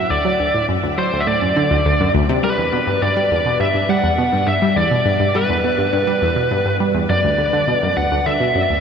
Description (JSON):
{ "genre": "ambient", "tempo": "103 BPM", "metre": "4/4", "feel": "straight", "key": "E minor", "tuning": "A4 = 441 Hz", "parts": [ { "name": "biting lead guitar", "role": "melody", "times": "0.0-8.8 s", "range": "B4 to F#5", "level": "-18 LUFS", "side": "equal", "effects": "overdrive, shimmer reverb, ping-pong delay" }, { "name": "analog pluck", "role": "riff", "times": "0.0-8.8 s", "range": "D2 to G3", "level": "-18 LUFS", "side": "equal", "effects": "chorus, phaser, shimmer reverb, ping-pong delay" } ], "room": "wet huge ambient reverb, RT60 8.4 s", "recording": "in a vast, echoing space", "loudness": "-15 LUFS", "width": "side -7 dB against mid", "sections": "0.0-8.8 A section", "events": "none", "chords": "0.0 D; 2.4 Em7; 7.1 N.C." }